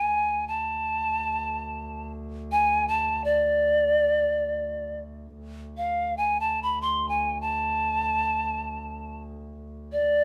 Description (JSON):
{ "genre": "Arabic maqam ensemble", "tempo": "free time", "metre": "none", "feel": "none", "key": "unclear", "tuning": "A4 = 441 Hz", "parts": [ { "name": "polished pan flute", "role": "melody", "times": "0.0-10.2 s", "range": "D5 to C6", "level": "-26 LUFS", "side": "equal", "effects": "none" }, { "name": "warm double bass", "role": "drone", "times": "0.0-10.2 s", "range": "D2", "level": "-41 LUFS", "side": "equal", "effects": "none" } ], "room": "light reverb", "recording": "band playing live in one room", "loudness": "-26 LUFS", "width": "mono", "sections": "0.0-5.4 A section; 5.4-10.2 A section", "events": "none", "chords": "none", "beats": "free time" }